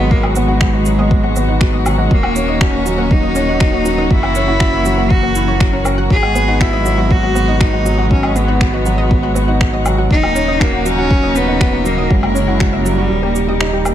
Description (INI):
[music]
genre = piano and strings electronica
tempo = 120 BPM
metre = 4/4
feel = straight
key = G# minor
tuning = A4 = 441 Hz
[part]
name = bright cello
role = melody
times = 0.0-13.6 s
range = G3 to G#4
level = -19 LUFS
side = equal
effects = ping-pong delay
[part]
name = warm string quartet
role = sustained chords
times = 0.0-13.9 s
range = C#3 to A#4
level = -22 LUFS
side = left 2 dB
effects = sidechain pumping
[part]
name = analog pluck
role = arpeggios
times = 0.0-13.8 s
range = F#4 to F#5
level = -28 LUFS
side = left 4 dB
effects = chorus, sidechain pumping, ping-pong delay
[part]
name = felt-muted upright piano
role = riff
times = 0.0-13.9 s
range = F#3 to A#4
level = -18 LUFS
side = right 1 dB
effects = ping-pong delay
[part]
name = round analog bass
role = bass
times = 0.0-13.9 s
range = D#1 to G#1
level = -19 LUFS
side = equal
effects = tube saturation, sidechain pumping
[part]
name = electronic kick drum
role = drums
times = 0.1-12.7 s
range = none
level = -14 LUFS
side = equal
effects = overdrive
[part]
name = electronic woodblock, shaker and finger snaps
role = drums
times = 0.2-13.9 s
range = none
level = -22 LUFS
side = equal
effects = none
[sound]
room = light reverb, studio reverb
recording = none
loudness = -12 LUFS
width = side -11 dB against mid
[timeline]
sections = 0.0-13.9 A section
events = kick drops out 13.1-13.9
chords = 0.0 G#m7; 2.1 D#m7; 4.1 F#7; 6.1 G#m7; 10.1 D#m7; 12.1 F#7; 13.1 D#7